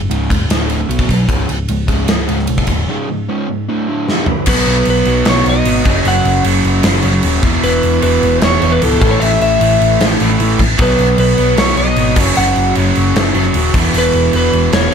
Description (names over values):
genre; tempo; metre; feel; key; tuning
hard rock; 152 BPM; 4/4; straight; unclear; A4 = 440 Hz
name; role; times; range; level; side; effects
crunchy overdriven guitar; riff; 0.0-14.9 s; C#2 to B3; -17 LUFS; right 2 dB; none
hollow-body short-scale picked electric bass; bass; 0.0-14.9 s; C#1 to B1; -17 LUFS; equal; none
gated 80s drum kit; drums; 0.1-14.9 s; crash cymbal, kick drum, ride cymbal, snare drum, toms; -16 LUFS; equal; none
lightly driven lead guitar; melody; 4.5-14.9 s; A4 to F#5; -16 LUFS; left 1 dB; none
overdriven electric guitar; riff; 4.5-14.9 s; E2 to B3; -19 LUFS; equal; none
room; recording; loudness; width
light reverb; none; -11 LUFS; side -7 dB against mid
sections
0.0-4.5 A section; 4.5-14.9 B section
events
break 2.9-4.5; drum fill 4.1-4.5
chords
0.0 C#5; 0.5 D5; 0.9 B5; 1.3 C#5; 3.7 D5; 4.1 G5; 4.5 B; 5.9 F#5; 7.4 E5; 9.0 A5; 10.8 B; 12.2 F#5; 13.7 E5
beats
0.11 0.51 0.91 | 1.30 1.70 2.10 2.50 | 2.89 3.29 3.69 4.08 | 4.48 4.87 5.27 5.66 | 6.06 6.45 6.85 7.24 | 7.64 8.03 8.43 8.82 | 9.22 9.61 10.01 10.40 | 10.79 11.19 11.58 11.97 | 12.37 12.76 13.16 13.55 | 13.94 14.34 14.73